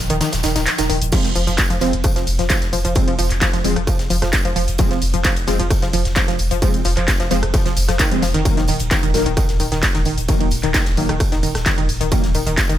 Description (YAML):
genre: driving peak-time techno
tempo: 131 BPM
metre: 4/4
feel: straight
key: F phrygian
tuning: A4 = 440 Hz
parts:
  - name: saturated sub bass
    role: bass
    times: 0.0-12.8 s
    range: Eb1 to F1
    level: -23 LUFS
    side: equal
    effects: overdrive, sidechain pumping, low-pass filter
  - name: analog drone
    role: drone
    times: 0.0-1.2 s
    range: F3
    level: -33 LUFS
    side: equal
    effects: none
  - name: analog pluck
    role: riff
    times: 0.1-12.8 s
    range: Eb3 to F3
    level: -23 LUFS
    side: equal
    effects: chorus, sidechain pumping, ping-pong delay
  - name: gated 80s drum kit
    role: drums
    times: 0.1-12.8 s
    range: hi-hat, snare drum, tambourine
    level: -30 LUFS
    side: left 1 dB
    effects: sidechain pumping on hats, high-pass filter on hats, high-pass filter on snare, sidechain pumping on perc, high-pass filter on perc, high-pass filter on room
  - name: techno drum kit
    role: drums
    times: 0.1-12.8 s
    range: crash cymbal, handclaps, hi-hat, ride cymbal, rim click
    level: -23 LUFS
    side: equal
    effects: sidechain pumping on hats, sidechain pumping on cymbals
  - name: rave stab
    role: stabs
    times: 1.1-12.3 s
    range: Eb3 to C4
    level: -24 LUFS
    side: left 1 dB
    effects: chorus, built-in reverb, vintage 12-bit sampler grit, sidechain pumping, ping-pong delay
  - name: electronic kick drum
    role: drums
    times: 1.1-12.7 s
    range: none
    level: -19 LUFS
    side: equal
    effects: distortion
room: digital ambience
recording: none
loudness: -15 LUFS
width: side -12 dB against mid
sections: 0.0-1.1 A section; 1.1-12.8 B section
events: kick drops out 0.2-1.1; drop 1.1-12.8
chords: 0.0 Ebsus2; 1.1 Fm; 8.5 Ebm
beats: 0.21 0.67 | 1.12 1.58 2.04 2.50 | 2.96 3.42 3.87 4.33 | 4.79 5.25 5.71 6.16 | 6.62 7.08 7.54 8.00 | 8.45 8.91 9.37 9.83 | 10.29 10.74 11.20 11.66 | 12.12 12.58